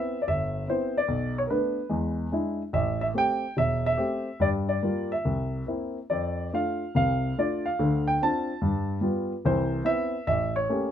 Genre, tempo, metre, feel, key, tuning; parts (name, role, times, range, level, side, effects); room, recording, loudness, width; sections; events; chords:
solo jazz; 144 BPM; 4/4; swing 66% on 8ths, rubato; C major; A4 = 440 Hz
dark baby grand piano; solo; 0.0-10.9 s; E1 to A5; -24 LUFS; equal
little or no reverb; close, detailed microphones; -24 LUFS; side -9 dB against mid
0.0-10.9 A section
0.0 Cmaj7; 1.1 Bm7; 1.9 E7; 2.7 Am7; 4.4 Gm7; 5.2 C7; 6.1 F6; 7.8 Dm7; 8.6 G7; 9.5 Cmaj7; 10.3 A7b9